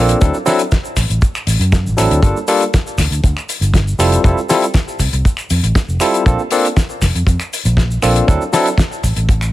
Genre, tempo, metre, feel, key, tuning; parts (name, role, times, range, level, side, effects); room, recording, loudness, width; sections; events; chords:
nu-disco, nu disco; 119 BPM; 4/4; straight; A4 = 440 Hz
barky tine electric piano; accompaniment; 0.0-8.7 s; F#3 to A4; -16 LUFS; equal; medium stereo tremolo, sidechain pumping, digital delay
fingered electric bass; bass; 0.0-9.5 s; F1 to F#2; -15 LUFS; equal
damped 70s drum kit; drums; 0.1-9.5 s; finger snaps, hi-hat, shaker, snare drum; -20 LUFS; left 2 dB
kick drum; drums; 0.2-9.4 s; -13 LUFS; equal
small room reverb; -12 LUFS; side -15 dB against mid
0.0-9.5 A section
0.2 D7; 2.2 Gm7; 4.0 Fmaj7; 6.3 Bbmaj7; 8.3 D7